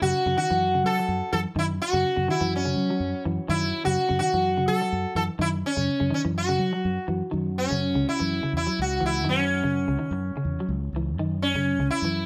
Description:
afrobeat; 125 BPM; 4/4; swing 55% on 16ths; F# dorian; A4 = 441 Hz
sitar; melody; 0.0-12.3 s; C#4 to A4; -27 LUFS; equal
clean electric guitar; arpeggios; 0.0-12.2 s; C#3 to F#3; -32 LUFS; equal; spring reverb
fingered electric bass; bass; 0.0-12.3 s; C#2 to F#3; -31 LUFS; equal
moderate studio reverb, RT60 0.7 s; band playing live in one room; -25 LUFS; mono
0.0-7.3 A section; 7.3-12.3 B section
0.0 F#7(no3); 7.3 F#5

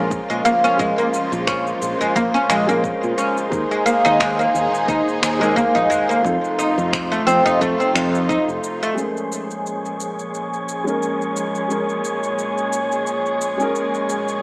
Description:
organic downtempo; 88 BPM; 4/4; swing 56% on 16ths; Bb minor; A4 = 440 Hz
felt-muted upright piano; accompaniment; 0.0-14.4 s; F3 to Bb4; -26 LUFS; equal; sidechain pumping, low-pass filter, tape echo
dark studio string section; sustained chords; 0.0-14.4 s; Bb2 to Ab4; -24 LUFS; equal; sidechain pumping, low-pass filter
fretless electric bass; bass; 0.0-8.6 s; F1 to Bb2; -24 LUFS; equal; wide subtle chorus, sidechain pumping
wind-like tuned noise texture; texture; 0.1-14.4 s; C5 to Db6; -27 LUFS; equal; built-in reverb
electronic cabasa and finger snaps; drums; 0.1-14.4 s; -26 LUFS; equal; overdrive
electronic kick drum; drums; 0.1-8.4 s; -28 LUFS; equal; overdrive
oud; arpeggios; 0.3-9.0 s; Ab3 to Eb4; -18 LUFS; equal; tape echo
udu; percussion; 0.5-7.6 s; -47 LUFS; equal
moderate lush hall reverb, RT60 2.0 s; small speaker sound; -17 LUFS; side -28 dB against mid
0.0-9.0 A section; 9.0-14.4 B section
filter sweep on felt piano 9.0-14.4; filter sweep on string section 9.0-14.4
0.0 Bbm7; 3.5 Ebsus4; 6.2 F7; 9.0 Bbm7

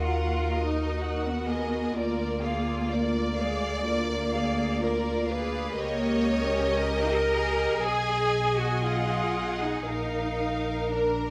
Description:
classical, slow romantic movement for string orchestra; 56-64 BPM; 4/4; rubato; Eb minor; A4 = 440 Hz
rich studio violin section; melody; 0.0-11.3 s; Bb4 to Ab5; -36 LUFS; equal
rich studio violin section; second line; 0.0-11.3 s; F4 to D5; -36 LUFS; equal
rich studio viola section; accompaniment; 0.0-11.3 s; F4 to Eb5; -34 LUFS; equal
clear studio cello section; bass; 0.0-11.3 s; Ab3 to Bb4; -32 LUFS; equal
rich studio double bass section; bass; 0.0-11.3 s; Bb1 to Eb2; -34 LUFS; equal
moderate recital hall reverb, RT60 1.4 s; -27 LUFS; mono
0.0-11.3 A section
0.0 Ebm; 2.0 Bb7/D; 5.8 Eb7/Db; 7.8 Abm/Cb; 9.9 Bb

